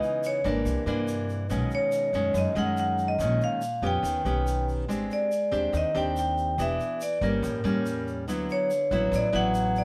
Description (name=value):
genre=bossa nova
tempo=142 BPM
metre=4/4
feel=straight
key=unclear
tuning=A4 = 442 Hz
part: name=vibraphone with medium hard mallets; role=melody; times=0.0-9.8 s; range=Bb4 to G5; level=-30 LUFS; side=equal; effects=none
part: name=nylon-string guitar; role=accompaniment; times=0.0-9.8 s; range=F#2 to G4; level=-32 LUFS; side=equal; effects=none
part: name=tube shaker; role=percussion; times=0.0-9.8 s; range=none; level=-51 LUFS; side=equal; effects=none
part: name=upright bass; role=bass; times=0.4-9.8 s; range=E1 to G2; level=-34 LUFS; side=equal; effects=none
room=moderate studio reverb, RT60 0.8 s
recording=none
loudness=-27 LUFS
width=mono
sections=0.0-9.8 A section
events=none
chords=0.0 Dbm9; 0.7 C9; 1.5 B69; 3.2 Bbm7; 4.0 Ebaug7; 4.9 Abmaj7#11; 6.6 Em7; 7.4 A7b9; 8.3 D69